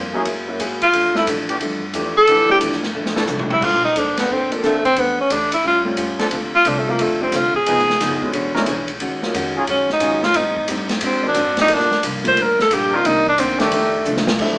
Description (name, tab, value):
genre	jazz, big band swing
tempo	178 BPM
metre	4/4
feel	swing 65% on 8ths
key	F major, Bb major from 3.6 s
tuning	A4 = 440 Hz
part	archtop guitar, miked and amplified	accompaniment	0.0-14.6 s	F2 to C#5	-25 LUFS	equal	none
part	upright bass	bass	0.0-14.6 s	E1 to A2	-34 LUFS	equal	none
part	warm baby grand piano	accompaniment	0.1-14.6 s	D3 to E5	-24 LUFS	equal	none
part	clear trombone section	sustained chords	0.1-14.0 s	D3 to Bb4	-23 LUFS	equal	none
part	swinging big-band drum kit	drums	0.3-14.5 s	crash cymbal, hi-hat, kick drum, ride cymbal, snare drum, toms	-24 LUFS	equal	none
part	clear tenor saxophone	melody	0.8-14.3 s	F3 to C5	-16 LUFS	equal	none
room	wet studio reverb, RT60 0.6 s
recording	band playing live in one room, small speaker sound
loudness	-15 LUFS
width	side -25 dB against mid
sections	0.0-3.6 A section; 3.6-14.4 A section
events	tenor saxophone solo 0.0-14.4; drum fill 2.9-3.6, 14.0-14.4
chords	0.3 Gb9; 0.9 Fmaj13; 3.6 Bbmaj9; 5.0 Em7; 5.6 A7alt; 6.3 Dm7; 7.7 Fm7b5; 8.3 E13; 9.0 Ebm11; 10.4 Am7b5; 11.0 Ab7#11; 11.7 Gm7; 13.0 Cm9; 13.7 F13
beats	0.25 0.59 | 0.93 1.26 1.60 1.94 | 2.27 2.61 2.95 3.28 | 3.62 3.96 4.29 4.63 | 4.97 5.30 5.64 5.98 | 6.31 6.65 6.99 7.32 | 7.66 8.00 8.33 8.67 | 9.01 9.34 9.68 10.02 | 10.35 10.69 11.02 11.36 | 11.70 12.03 12.37 12.70 | 13.04 13.38 13.71 14.05 | 14.39